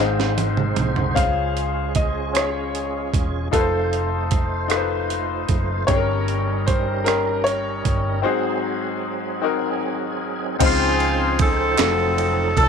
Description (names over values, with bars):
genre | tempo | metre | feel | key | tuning
slow gospel | 51 BPM (dotted quarters) | 6/8 | straight | Db major | A4 = 440 Hz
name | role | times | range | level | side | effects
clear grand piano | melody | 0.0-9.8 s | A4 to F5 | -25 LUFS | right 1 dB | none
bright upright piano | accompaniment | 0.0-12.7 s | G2 to Eb5 | -24 LUFS | left 12 dB | none
tonewheel organ | sustained chords | 0.0-12.7 s | Db3 to C5 | -28 LUFS | right 14 dB | slow rotary speaker, chorus vibrato
hollow-body short-scale fingered electric bass | bass | 0.0-12.7 s | Fb1 to Db2 | -25 LUFS | equal | none
breakbeat sampler-style drum kit | drums | 0.2-12.7 s | crash cymbal, hi-hat, kick drum, ride cymbal, rim click, snare drum, toms | -23 LUFS | right 3 dB | none
warm horn section | melody | 10.6-12.7 s | C4 to A4 | -20 LUFS | equal | none
group handclap | percussion | 11.8-12.1 s | none | -32 LUFS | right 16 dB | none
room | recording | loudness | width
light reverb, studio ambience | 1960s-style stereo with parts hard left and right | -19 LUFS | side -6 dB against mid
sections
0.0-10.6 A section; 10.6-12.7 B section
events
drum fill 0.0-1.2; break 8.2-10.6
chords
0.0 Ab; 1.2 Dbmaj7; 3.5 F7; 5.9 Eb7/G; 8.2 Ab7; 10.6 Dbmaj9; 11.8 F7b9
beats
| 1.16 2.34 | 3.52 4.71 | 5.89 7.07 | 8.25 9.43 | 10.61 11.78